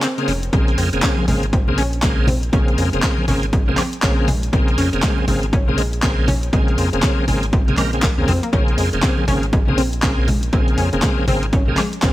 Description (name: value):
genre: deep house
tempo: 120 BPM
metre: 4/4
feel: swing 61% on 16ths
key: Bb minor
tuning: A4 = 441 Hz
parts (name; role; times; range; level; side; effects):
- analog pluck; arpeggios; 0.0-12.1 s; Ab3 to Db4; -26 LUFS; left 1 dB; chorus, cassette tape, sidechain pumping, digital delay
- bright tonewheel organ; stabs; 0.0-12.1 s; Db3 to Bb4; -22 LUFS; equal; chorus vibrato, slow rotary speaker, sidechain pumping, digital delay
- deep house drum kit; drums; 0.0-12.1 s; handclaps, hi-hat, woodblock; -26 LUFS; equal; studio ambience
- round analog bass; bass; 0.3-12.1 s; F1 to F2; -22 LUFS; equal; sidechain pumping
- electronic kick drum; drums; 0.5-12.1 s; none; -19 LUFS; equal; overdrive, studio ambience
- congas; percussion; 1.2-11.9 s; none; -24 LUFS; equal; none
room: little or no reverb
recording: vinyl crackle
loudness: -15 LUFS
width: side -15 dB against mid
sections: 0.0-12.1 A section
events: break 0.0-0.5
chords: 0.0 Bbm9